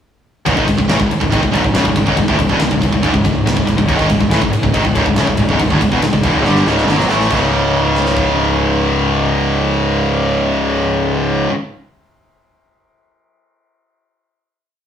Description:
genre	heavy metal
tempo	140 BPM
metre	4/4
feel	straight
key	C# minor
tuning	A4 = 440 Hz
part	distorted electric guitar	riff	0.5-11.5 s	C#2 to A3	-21 LUFS	right 1 dB	overdrive
part	high-gain distorted guitar	riff	0.5-11.5 s	C#2 to A3	-18 LUFS	right 6 dB	distortion
part	tight distorted guitar	riff	0.5-11.5 s	C#2 to A3	-17 LUFS	left 5 dB	distortion
part	fuzz fingered electric bass	bass	0.5-11.5 s	C#1 to B1	-20 LUFS	equal	overdrive
part	tight metal drum kit	drums	0.5-8.3 s	crash cymbal, kick drum, ride cymbal, snare drum	-20 LUFS	equal	none
room	moderate studio reverb, RT60 0.6 s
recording	rough rehearsal-room recording, tube saturation, studio reverb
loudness	-12 LUFS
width	side -8 dB against mid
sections	0.5-7.3 riff; 7.3-10.7 final chord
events	drum fill 6.5-7.3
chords	0.5 C#m; 7.3 C#5

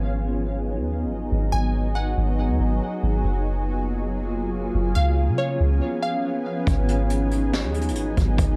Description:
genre	hip hop, atmospheric cloud-rap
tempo	140 BPM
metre	4/4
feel	half-time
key	G# dorian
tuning	A4 = 437 Hz
part	shimmering ambient pad	sustained chords	0.0-8.6 s	E#3 to G#4	-29 LUFS	equal	chorus, built-in reverb, sidechain pumping
part	soft 808-style bass	bass	0.0-8.6 s	F#1 to C#3	-25 LUFS	equal	none
part	glassy wavetable pluck	melody	1.5-6.2 s	C#5 to G#5	-33 LUFS	equal	chorus, dub echo
part	jazz brush drum kit	drums	6.7-8.5 s	hi-hat, kick drum, snare drum	-27 LUFS	equal	none
room	little or no reverb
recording	echo-heavy mix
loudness	-24 LUFS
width	mono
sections	0.0-6.7 A section; 6.7-8.6 B section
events	break 5.8-6.7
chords	0.0 G#m7; 3.2 F#maj9; 5.0 C#7; 6.7 G#m7

